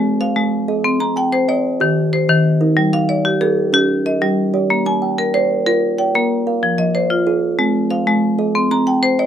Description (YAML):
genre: southern african traditional, mbira-style interlocking cycle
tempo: 125 BPM (dotted quarters)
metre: 12/8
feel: straight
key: unclear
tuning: A4 = 439 Hz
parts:
  - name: kalimba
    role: arpeggios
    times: 0.0-9.3 s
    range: Eb3+29c to Ab5+43c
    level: -19 LUFS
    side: right 6 dB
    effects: none
  - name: marimba with hard mallets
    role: arpeggios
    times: 0.0-9.3 s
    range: Eb3+29c to Bb5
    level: -16 LUFS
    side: left 3 dB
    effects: none
room: light reverb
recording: rough home demo mix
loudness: -14 LUFS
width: side -9 dB against mid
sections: 0.0-9.3 A section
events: none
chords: 0.0 Ab; 0.8 Cm; 1.8 Eb; 2.8 Gm; 4.7 Bb; 6.6 Fm; 7.6 Ab; 8.6 Cm